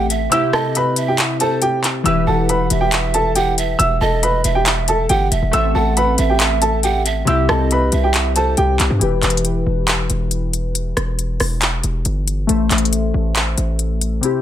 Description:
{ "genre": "hip hop, trap", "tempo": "138 BPM", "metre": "4/4", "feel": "half-time", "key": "E minor", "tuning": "A4 = 440 Hz", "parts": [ { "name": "dark grand piano", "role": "melody", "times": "0.0-8.7 s", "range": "G4 to E6", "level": "-19 LUFS", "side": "right 1 dB", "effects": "ping-pong delay" }, { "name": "breathy mellow pan flute", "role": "second line", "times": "0.0-8.6 s", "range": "C5 to F#5", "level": "-24 LUFS", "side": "right 8 dB", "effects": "ping-pong delay" }, { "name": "glassy digital keys", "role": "accompaniment", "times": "0.0-14.4 s", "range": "C3 to E5", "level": "-22 LUFS", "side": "left 4 dB", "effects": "chorus, low-pass filter" }, { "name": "hard-hitting 808-style bass", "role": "bass", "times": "0.0-14.2 s", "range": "E1 to G2", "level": "-19 LUFS", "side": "equal", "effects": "none" }, { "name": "trap drum kit", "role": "drums", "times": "0.1-14.3 s", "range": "handclaps, hi-hat, rim click", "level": "-19 LUFS", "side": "left 1 dB", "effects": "none" } ], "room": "studio ambience", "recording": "none", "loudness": "-15 LUFS", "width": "side -11 dB against mid", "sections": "0.0-9.0 A section; 9.0-14.4 B section", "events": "kick muted 0.3-2.1; filter sweep on synth keys 9.0-14.4", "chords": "0.3 C; 2.1 Em; 5.5 Am; 7.3 C; 9.0 Em; 12.5 Am", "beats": "| 0.32 0.75 1.19 1.62 | 2.06 2.49 2.92 3.36 | 3.79 4.23 4.66 5.10 | 5.53 5.97 6.40 6.84 | 7.27 7.71 8.14 8.58 | 9.01 9.45 9.88 10.32 | 10.75 11.19 11.62 12.06 | 12.49 12.93 13.36 13.79 | 14.23" }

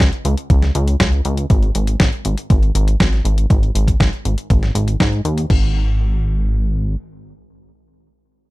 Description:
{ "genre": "italo disco", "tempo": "120 BPM", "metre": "4/4", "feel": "straight", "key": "unclear", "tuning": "A4 = 440 Hz", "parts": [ { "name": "chorused synth bass", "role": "bass", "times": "0.0-7.0 s", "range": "G#1 to G#2", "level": "-17 LUFS", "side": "equal", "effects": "none" }, { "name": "detuned 8-bit digital drum machine", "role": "drums", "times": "0.0-5.6 s", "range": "crash cymbal, hi-hat, snare drum", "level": "-21 LUFS", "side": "equal", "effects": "none" }, { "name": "electronic kick drum", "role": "drums", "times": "0.0-5.6 s", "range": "none", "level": "-16 LUFS", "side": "equal", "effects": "none" } ], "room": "little or no reverb", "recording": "dry, close 1970s-style studio recording, faint mains hum", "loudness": "-14 LUFS", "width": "side -20 dB against mid", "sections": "0.0-5.5 A section; 5.5-8.5 B section", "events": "none", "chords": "none", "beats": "0.00 0.50 1.00 | 1.50 2.00 2.50 3.00 | 3.50 4.00 4.50 5.00 | 5.50 6.00 6.50" }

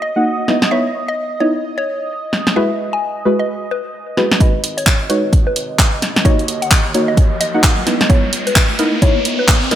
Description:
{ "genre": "UK garage, two-step garage", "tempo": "130 BPM", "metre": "4/4", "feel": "swing 61% on 16ths", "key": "G# minor", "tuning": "A4 = 440 Hz", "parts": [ { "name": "mallet-like synth pluck", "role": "melody", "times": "0.0-9.8 s", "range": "A#4 to G#5", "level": "-23 LUFS", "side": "left 1 dB", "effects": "chorus, phaser, dub echo" }, { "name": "warm analog pad", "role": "sustained chords", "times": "0.0-9.8 s", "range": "D#5", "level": "-27 LUFS", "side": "right 2 dB", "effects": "chorus, sidechain pumping" }, { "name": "deep mellow chord stab", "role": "stabs", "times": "0.2-9.8 s", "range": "G#3 to F#5", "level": "-18 LUFS", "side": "equal", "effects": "chorus, tape echo" }, { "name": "house drum kit", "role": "drums", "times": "0.5-9.8 s", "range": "handclaps, hi-hat, snare drum", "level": "-16 LUFS", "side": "equal", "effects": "none" }, { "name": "saturated sub bass", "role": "bass", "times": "4.4-9.8 s", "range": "D#1 to D#2", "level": "-33 LUFS", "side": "equal", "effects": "none" }, { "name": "electronic kick drum", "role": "drums", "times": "4.4-9.6 s", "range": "none", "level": "-13 LUFS", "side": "equal", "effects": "none" }, { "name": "riser", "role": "sound effects", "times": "6.0-9.8 s", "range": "none", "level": "-24 LUFS", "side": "left 1 dB", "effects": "none" } ], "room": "light reverb", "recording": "none", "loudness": "-13 LUFS", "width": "side -11 dB against mid", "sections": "0.0-4.4 A section; 4.4-9.8 B section", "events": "filter sweep on synth stab 0.0-4.4; build-up 4.4-9.8; filter sweep on synth pluck 4.4-9.8; riser 6.0-9.8", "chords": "0.5 C#m9; 2.6 F#9sus4; 4.4 G#m7; 6.0 D#m7; 7.9 C#m9", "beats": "0.25 | 0.71 1.17 1.64 2.10 | 2.56 3.02 3.48 3.94 | 4.41 4.87 5.33 5.79 | 6.25 6.71 7.17 7.63 | 8.10 8.56 9.02 9.48" }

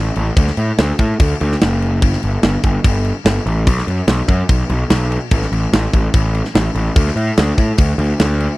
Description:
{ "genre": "heavy metal", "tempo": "145 BPM", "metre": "4/4", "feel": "straight", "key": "unclear", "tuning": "A4 = 438 Hz", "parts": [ { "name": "fuzz picked electric bass", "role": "bass", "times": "0.0-8.5 s", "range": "F#1 to A2", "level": "-16 LUFS", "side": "equal", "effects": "overdrive" }, { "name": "tight metal drum kit", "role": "drums", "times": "0.2-8.5 s", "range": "crash cymbal, kick drum, snare drum", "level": "-16 LUFS", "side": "equal", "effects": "none" } ], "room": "little or no reverb", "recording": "dry, close 1970s-style studio recording", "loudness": "-13 LUFS", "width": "side -20 dB against mid", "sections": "0.0-8.6 A section", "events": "none", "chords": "none", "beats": "| 0.36 0.78 1.19 1.60 | 2.01 2.43 2.84 3.25 | 3.67 4.08 4.49 4.90 | 5.32 5.73 6.14 6.55 | 6.97 7.38 7.79 8.21" }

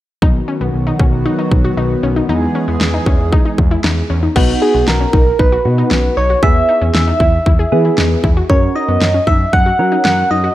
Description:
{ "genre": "synth-pop", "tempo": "116 BPM", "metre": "4/4", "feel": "straight", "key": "B major", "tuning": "A4 = 440 Hz", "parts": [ { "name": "chorused pulse-width pad", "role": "sustained chords", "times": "0.2-4.3 s", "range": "D#3 to G#4", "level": "-20 LUFS", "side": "equal", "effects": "none" }, { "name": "wide unison pluck", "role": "arpeggios", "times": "0.2-10.5 s", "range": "B3 to G#4", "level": "-22 LUFS", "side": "left 3 dB", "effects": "analog delay" }, { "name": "smooth gliding synth bass", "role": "bass", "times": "0.2-10.5 s", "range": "B1 to F#3", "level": "-16 LUFS", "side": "equal", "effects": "none" }, { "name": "pop drum kit", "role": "drums", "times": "0.2-10.2 s", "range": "crash cymbal, kick drum, snare drum", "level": "-14 LUFS", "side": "equal", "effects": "none" }, { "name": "soft electric-piano-like synth keys", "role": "accompaniment", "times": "4.4-10.3 s", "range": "B3 to A#4", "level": "-18 LUFS", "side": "right 1 dB", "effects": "chorus, phaser" }, { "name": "soft struck synth lead", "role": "melody", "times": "4.6-10.5 s", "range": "G#4 to F#5", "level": "-15 LUFS", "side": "right 1 dB", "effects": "chorus" } ], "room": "light reverb", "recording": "none", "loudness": "-11 LUFS", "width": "side -14 dB against mid", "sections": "0.2-4.4 A section; 4.4-10.5 B section", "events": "none", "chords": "0.2 B; 2.3 E; 4.4 B; 6.4 E; 8.5 F#", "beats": "| 0.22 0.74 1.26 1.77 | 2.29 2.81 3.33 3.84 | 4.36 4.88 5.39 5.91 | 6.43 6.95 7.46 7.98 | 8.50 9.01 9.53 10.05" }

